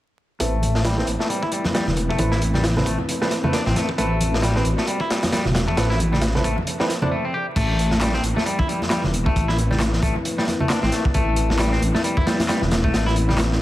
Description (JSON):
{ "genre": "breakbeat, breaks", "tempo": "134 BPM", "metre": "4/4", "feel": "swing 58% on 16ths", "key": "A dorian", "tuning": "A4 = 440 Hz", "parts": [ { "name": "dark analog pad", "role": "sustained chords", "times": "0.4-13.6 s", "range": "A3 to B4", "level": "-29 LUFS", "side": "left 2 dB", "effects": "chorus, vintage 12-bit sampler grit, sidechain pumping" }, { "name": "semi-hollow electric guitar", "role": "riff", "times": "0.4-13.4 s", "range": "G3 to G4", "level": "-26 LUFS", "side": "left 1 dB", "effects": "vintage 12-bit sampler grit, low-pass filter, dub echo" }, { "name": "warm concert grand piano", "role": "stabs", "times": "0.4-7.1 s", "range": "C4 to D5", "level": "-29 LUFS", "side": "right 2 dB", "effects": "low-pass filter, dub echo" }, { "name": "dark detuned saw bass", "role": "bass", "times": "0.4-13.6 s", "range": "E1 to A1", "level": "-22 LUFS", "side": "equal", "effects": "none" }, { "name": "crunchy breakbeat drum kit", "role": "drums", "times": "0.4-13.6 s", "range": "crash cymbal, hi-hat, kick drum, snare drum", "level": "-24 LUFS", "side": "equal", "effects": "high-pass filter on kick, high-pass filter on hats, high-pass filter on cymbals, high-pass filter on snare, high-pass filter on room, dub echo" }, { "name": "congas", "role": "percussion", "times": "0.6-13.4 s", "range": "none", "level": "-28 LUFS", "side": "right 1 dB", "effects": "none" }, { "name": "electronic handclaps", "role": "drums", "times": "8.0-13.5 s", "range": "none", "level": "-33 LUFS", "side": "equal", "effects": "none" } ], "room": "light reverb, studio ambience", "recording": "echo-heavy mix, vinyl crackle", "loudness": "-18 LUFS", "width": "side -15 dB against mid", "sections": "0.4-7.6 A section; 7.6-13.6 B section", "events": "filter sweep on detuned saw bass 0.4-7.6; filter sweep on clean electric guitar 0.4-7.6; filter sweep on grand piano 0.4-7.6; break 7.1-7.6", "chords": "0.4 Amadd9" }